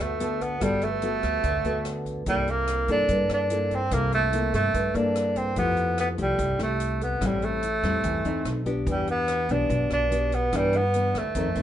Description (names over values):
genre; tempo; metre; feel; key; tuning
bossa nova; 145 BPM; 4/4; straight; G major; A4 = 437 Hz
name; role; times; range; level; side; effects
breathy tenor saxophone; melody; 0.0-11.6 s; G3 to D4; -25 LUFS; right 1 dB; plate reverb
nylon-string guitar; accompaniment; 0.0-11.6 s; F2 to A4; -28 LUFS; left 1 dB; none
upright bass; bass; 0.0-11.6 s; G1 to G2; -30 LUFS; equal; none
swinging big-band drum kit; drums; 0.2-11.6 s; hi-hat, kick drum, rim click; -36 LUFS; left 1 dB; none
room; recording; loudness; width
moderate studio reverb, RT60 0.6 s; rough home demo mix, nothing above 10.9 kHz; -23 LUFS; side -11 dB against mid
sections
0.0-11.6 A section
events
none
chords
0.0 Gmaj9; 2.3 C13; 5.6 Fmaj9; 7.2 Am7; 8.5 B7b9; 8.9 Em7; 10.5 G6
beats
0.21 | 0.62 1.03 1.44 1.86 | 2.27 2.68 3.10 3.51 | 3.92 4.33 4.75 5.16 | 5.57 5.99 6.40 6.81 | 7.22 7.64 8.05 8.46 | 8.88 9.29 9.70 10.12 | 10.53 10.94 11.36